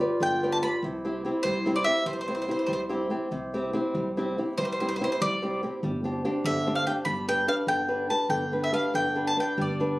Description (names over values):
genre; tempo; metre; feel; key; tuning
italian folk, Italian serenade; 96 BPM (dotted quarters); 6/8; rubato; C major; A4 = 437 Hz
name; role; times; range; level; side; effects
mellow clarinet; second line; 0.0-3.1 s; E4 to F4; -32 LUFS; equal; none
flamenco guitar; accompaniment; 0.0-10.0 s; C3 to D5; -28 LUFS; equal; none
bowl-back mandolin; melody; 0.2-10.0 s; C5 to B5; -27 LUFS; equal; plate reverb
upright bass; bass; 0.2-10.0 s; G1 to C2; -36 LUFS; equal; none
room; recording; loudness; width
moderate studio reverb, RT60 0.5 s; recorded on a phone in the room, club reverb, compression; -25 LUFS; side -19 dB against mid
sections
0.0-3.3 A section; 3.3-10.0 A section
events
none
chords
0.0 G; 0.8 C; 5.8 Gsus4; 7.1 G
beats
0.20 | 0.83 1.45 | 2.06 2.68 | 3.32 3.95 | 4.58 5.21 | 5.83 6.44 | 7.06 7.67 | 8.30 8.94 | 9.57